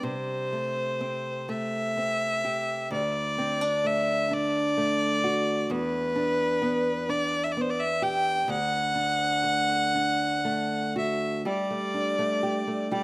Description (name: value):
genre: celtic folk, Celtic slow air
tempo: 39-44 BPM (dotted quarters)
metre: 6/8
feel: rubato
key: unclear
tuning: A4 = 440 Hz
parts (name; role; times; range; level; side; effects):
- warm fiddle; melody; 0.0-13.0 s; B4 to G5; -26 LUFS; equal; none
- nylon-string guitar; accompaniment; 0.0-13.0 s; D2 to G4; -29 LUFS; right 1 dB; none
room: light reverb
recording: recorded outdoors, with no room sound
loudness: -24 LUFS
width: side -22 dB against mid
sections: 0.0-11.5 A section; 11.5-13.0 B section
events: none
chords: 0.0 C6; 2.9 D; 5.7 Em7; 8.5 D; 11.5 Gsus2